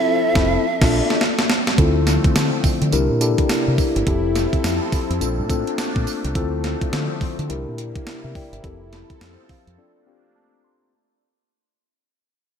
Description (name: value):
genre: R&B, new jack swing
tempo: 105 BPM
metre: 4/4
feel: swing 61% on 16ths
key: D minor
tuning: A4 = 440 Hz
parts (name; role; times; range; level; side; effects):
- breathy polished pan flute; melody; 0.0-1.2 s; E5; -23 LUFS; right 5 dB; slapback echo, tape echo
- mellow tine electric piano; accompaniment; 0.0-10.9 s; C4 to C6; -23 LUFS; left 4 dB; slow stereo tremolo, slapback echo
- phased analog pad; sustained chords; 0.0-10.9 s; C3 to A4; -27 LUFS; left 1 dB; phaser, chorus
- deep dub fingered electric bass; bass; 0.4-9.8 s; F1 to D3; -22 LUFS; right 1 dB; none
- crisp 8-bit digital drum machine; drums; 0.4-9.8 s; crash cymbal, hi-hat, kick drum, snare drum, tambourine; -21 LUFS; right 1 dB; none
room: moderate concert hall reverb, RT60 2.5 s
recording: big arena sound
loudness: -17 LUFS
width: side -7 dB against mid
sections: 0.0-1.8 A section; 1.8-10.9 B section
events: band accent 0.0-1.8; drum fill 0.6-1.8; fade-out 1.8-10.9; tine electric piano fill 9.2-10.9; break 9.8-10.9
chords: 0.0 Fmaj7; 0.6 Bbmaj7; 1.2 Am7; 1.8 Dm7; 2.9 C7; 4.1 Fmaj7; 5.2 Bbmaj7; 6.4 Dm7; 7.5 C7; 8.6 Fmaj7; 9.8 Bbmaj7